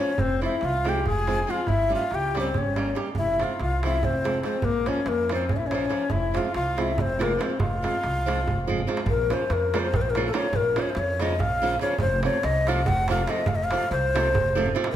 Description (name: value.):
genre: balkan folk, Balkan wedding band.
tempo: 284 BPM (eighths).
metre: 7/8.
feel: straight.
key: F harmonic minor, Bb harmonic minor from 9.1 s.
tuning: A4 = 444 Hz.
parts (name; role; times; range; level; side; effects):
breathy ney; melody; 0.0-15.0 s; A4 to Ab5; -26 LUFS; left 2 dB; none.
bright clarinet; second line; 0.0-8.8 s; Bb3 to Ab4; -31 LUFS; left 3 dB; none.
flamenco guitar; accompaniment; 0.0-14.9 s; C3 to G4; -29 LUFS; right 4 dB; none.
darbuka; percussion; 0.1-14.9 s; none; -31 LUFS; right 3 dB; none.
upright bass; bass; 0.2-14.7 s; F1 to F2; -28 LUFS; equal; none.
room: wet recital hall reverb, RT60 1.4 s.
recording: none.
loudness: -22 LUFS.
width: side -11 dB against mid.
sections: 0.0-9.1 A section; 9.1-15.0 B section.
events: drum fill 8.6-9.1, 14.5-14.9.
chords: 0.2 Fm; 1.7 Gdim; 3.1 Fm; 4.6 Bbm; 6.1 Fm; 9.1 Bbm; 12.0 F.